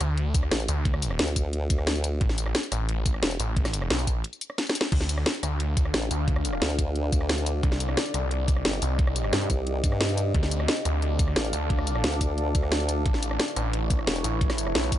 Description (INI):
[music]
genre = dark technical drum and bass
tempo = 177 BPM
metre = 4/4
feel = straight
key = D phrygian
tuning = A4 = 440 Hz
[part]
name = snarling distorted saw bass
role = bass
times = 0.0-15.0 s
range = A1 to G2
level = -27 LUFS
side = equal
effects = distortion, sidechain pumping
[part]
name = drum and bass drum kit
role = drums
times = 0.0-15.0 s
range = crash cymbal, hi-hat, rim click, snare drum, tambourine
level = -28 LUFS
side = equal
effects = none
[part]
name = electronic kick drum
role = drums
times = 0.3-15.0 s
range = none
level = -25 LUFS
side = equal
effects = none
[part]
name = formant-sweep wobble bass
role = bass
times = 0.5-3.4, 5.9-14.2 s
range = E1 to G2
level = -27 LUFS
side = equal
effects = chorus
[part]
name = deep dark ambient pad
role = sustained chords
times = 5.6-15.0 s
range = A3 to F5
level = -32 LUFS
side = left 1 dB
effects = chorus, built-in reverb, sidechain pumping
[sound]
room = digital ambience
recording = nothing above 11.0 kHz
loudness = -23 LUFS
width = side -12 dB against mid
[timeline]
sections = 0.0-15.0 A section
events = break 4.2-4.9; drum fill 4.6-4.9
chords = 0.0 D5; 2.2 Asus2; 4.9 Dm; 7.6 Cm; 10.3 Dm; 13.1 Aadd9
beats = 0.18 0.52 | 0.85 1.19 1.53 1.87 | 2.21 2.55 2.89 3.23 | 3.57 3.90 4.24 4.58 | 4.92 5.26 5.60 5.94 | 6.28 6.62 6.96 7.29 | 7.63 7.97 8.31 8.65 | 8.99 9.33 9.67 10.01 | 10.35 10.68 11.02 11.36 | 11.70 12.04 12.38 12.72 | 13.06 13.40 13.73 14.07 | 14.41 14.75